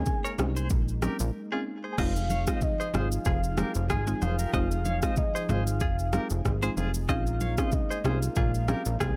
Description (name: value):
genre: afrobeats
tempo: 94 BPM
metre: 4/4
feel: swing 55% on 16ths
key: F minor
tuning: A4 = 437 Hz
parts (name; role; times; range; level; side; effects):
- soft octave-layered synth lead; melody; 0.0-9.2 s; Eb5 to Ab5; -37 LUFS; equal; chorus, phaser, digital delay
- mallet-like synth pluck; accompaniment; 0.0-8.9 s; Ab3 to Ab4; -37 LUFS; equal; chorus
- warm analog pad; sustained chords; 0.0-9.2 s; F3 to Ab4; -42 LUFS; equal; none
- plucky analog bass; bass; 0.0-9.2 s; F1 to C2; -31 LUFS; equal; none
- afro-pop drum kit; drums; 0.1-9.2 s; crash cymbal, kick drum, rim click, shaker; -33 LUFS; equal; none
- congas; percussion; 0.1-9.2 s; none; -39 LUFS; equal; none
- direct-recorded clean electric guitar; riff; 0.2-9.1 s; F4 to F5; -38 LUFS; equal; tremolo
room: digital ambience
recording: none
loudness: -28 LUFS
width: mono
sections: 0.0-2.0 A section; 2.0-9.2 B section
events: break 1.3-2.0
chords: 0.0 Bbm11; 2.0 Fm7; 7.1 Bbm11